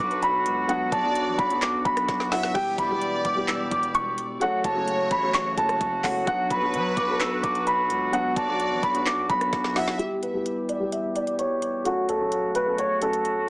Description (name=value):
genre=hip hop, trap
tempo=129 BPM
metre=4/4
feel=half-time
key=B minor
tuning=A4 = 438 Hz
part: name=dark baby grand piano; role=melody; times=0.0-13.5 s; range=F#4 to E6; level=-24 LUFS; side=equal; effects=low-pass filter, tape echo
part: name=rich studio violin section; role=second line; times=0.0-10.0 s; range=B4 to E5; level=-32 LUFS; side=equal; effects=tape echo
part: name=felt-muted upright piano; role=accompaniment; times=0.0-13.5 s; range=F#3 to A4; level=-30 LUFS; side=left 1 dB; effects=low-pass filter
part: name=warm woodwind section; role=sustained chords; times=0.0-13.5 s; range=C#3 to G4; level=-32 LUFS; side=equal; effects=low-pass filter
part: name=distorted 808-style bass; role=bass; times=0.0-10.0 s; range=E1 to F#3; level=-36 LUFS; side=equal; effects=distortion
part: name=trap drum kit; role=drums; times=0.1-13.4 s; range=crash cymbal, handclaps, hi-hat, kick drum, rim click, snare drum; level=-31 LUFS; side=equal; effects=none
room=light reverb, studio ambience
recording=heavily compressed radio sound, small speaker sound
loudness=-22 LUFS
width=side -24 dB against mid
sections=0.0-10.0 A section; 10.0-13.5 B section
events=drum fill 2.1-2.6, 9.5-10.0; filter sweep 10.0-13.5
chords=0.0 Bm; 2.6 Em; 4.4 F#m; 6.3 Bm; 10.0 Em; 11.9 F#m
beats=0.23 | 0.69 1.16 1.62 2.09 | 2.55 3.02 3.48 3.95 | 4.41 4.88 5.34 5.81 | 6.27 6.74 7.20 7.67 | 8.13 8.60 9.06 9.53 | 9.99 10.46 10.92 11.39 | 11.85 12.32 12.78 13.25